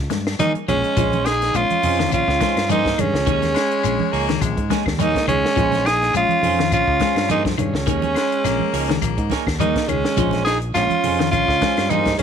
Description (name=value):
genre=afrobeat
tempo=104 BPM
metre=4/4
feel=swing 54% on 16ths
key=Bb dorian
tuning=A4 = 440 Hz
part: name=fingered electric bass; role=bass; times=0.0-12.2 s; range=Bb1 to Eb3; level=-25 LUFS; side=equal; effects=none
part: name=electric guitar at the edge of break-up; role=arpeggios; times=0.1-12.2 s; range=Eb3 to Ab3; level=-26 LUFS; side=left 14 dB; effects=phaser
part: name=semi-hollow electric guitar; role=stabs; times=0.1-12.2 s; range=Bb3 to Db5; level=-29 LUFS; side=right 14 dB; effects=lush chorus
part: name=compact cocktail drum kit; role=drums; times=0.1-12.2 s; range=hi-hat, kick drum, snare drum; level=-26 LUFS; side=left 1 dB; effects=none
part: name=congas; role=percussion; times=0.1-12.2 s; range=none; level=-28 LUFS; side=right 10 dB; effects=none
part: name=shekere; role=percussion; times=0.1-12.2 s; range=none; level=-30 LUFS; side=left 6 dB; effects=none
part: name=claves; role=percussion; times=0.3-12.2 s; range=none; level=-34 LUFS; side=left 17 dB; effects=none
part: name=raspy tenor saxophone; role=melody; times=0.4-12.2 s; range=Db4 to Ab4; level=-20 LUFS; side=equal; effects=none
part: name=breathy alto saxophone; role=second line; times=0.4-12.2 s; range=Ab3 to Eb4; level=-26 LUFS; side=right 14 dB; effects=none
part: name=raspy baritone saxophone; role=second line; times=3.5-9.4 s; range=Ab3 to Bb3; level=-28 LUFS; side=left 13 dB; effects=none
room=light reverb, small room reverb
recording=1960s-style stereo with parts hard left and right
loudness=-16 LUFS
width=side -7 dB against mid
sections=1.0-12.2 A section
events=none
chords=0.0 Eb7sus4; 1.0 Bbm11; 3.3 Eb7sus4; 5.6 Bbm11; 7.9 Eb7sus4; 10.2 Bbm11